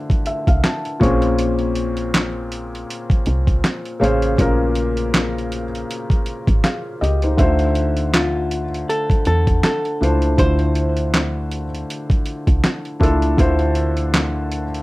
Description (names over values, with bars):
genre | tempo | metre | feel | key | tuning
lo-fi hip hop | 80 BPM | 4/4 | swing 58% on 16ths | D minor | A4 = 441 Hz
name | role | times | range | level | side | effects
felt-muted upright piano | accompaniment | 0.0-14.8 s | Bb2 to Db6 | -21 LUFS | left 1 dB | cassette tape, plate reverb
dusty soul sampler-style drum kit | drums | 0.1-14.8 s | handclaps, hi-hat, kick drum, snare drum | -18 LUFS | equal | overdrive
woody FM bass | bass | 0.5-14.8 s | Ab1 to E2 | -21 LUFS | equal | none
hollow-body jazz guitar | melody | 8.1-11.8 s | F4 to C5 | -23 LUFS | equal | plate reverb, analog delay
room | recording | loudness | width
light reverb | none | -16 LUFS | side -19 dB against mid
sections
0.0-14.8 A section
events
none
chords
0.0 Dm9; 1.0 Bbm9; 7.4 Dm9